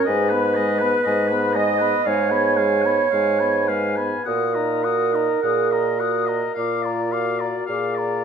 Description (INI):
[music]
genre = classical, slow romantic movement for wind quintet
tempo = 51-61 BPM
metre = 4/4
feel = rubato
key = Eb minor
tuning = A4 = 438 Hz
[part]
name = mellow hollow silver concert flute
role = melody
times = 0.0-8.2 s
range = Ab5 to Eb6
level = -27 LUFS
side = left 10 dB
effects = none
[part]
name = warm oboe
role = second line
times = 0.0-8.2 s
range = Cb5 to Ab5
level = -27 LUFS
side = left 5 dB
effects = none
[part]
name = mellow French horn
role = accompaniment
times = 0.0-8.2 s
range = Ab3 to Ab4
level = -28 LUFS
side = left 2 dB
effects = none
[part]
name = mellow clarinet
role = accompaniment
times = 0.0-7.6 s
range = Bb4 to Eb5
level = -21 LUFS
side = right 5 dB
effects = none
[part]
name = warm bassoon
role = bass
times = 0.1-8.2 s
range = Ab2 to Bb2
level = -24 LUFS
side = right 1 dB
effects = none
[sound]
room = wet recital hall reverb, RT60 1.4 s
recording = minimal, uncompressed stereo recording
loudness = -18 LUFS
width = side -7 dB against mid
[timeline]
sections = 0.0-8.2 A section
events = none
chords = 0.1 Abm; 2.1 Fdim/Ab; 4.3 Ebm/Bb; 6.6 Bb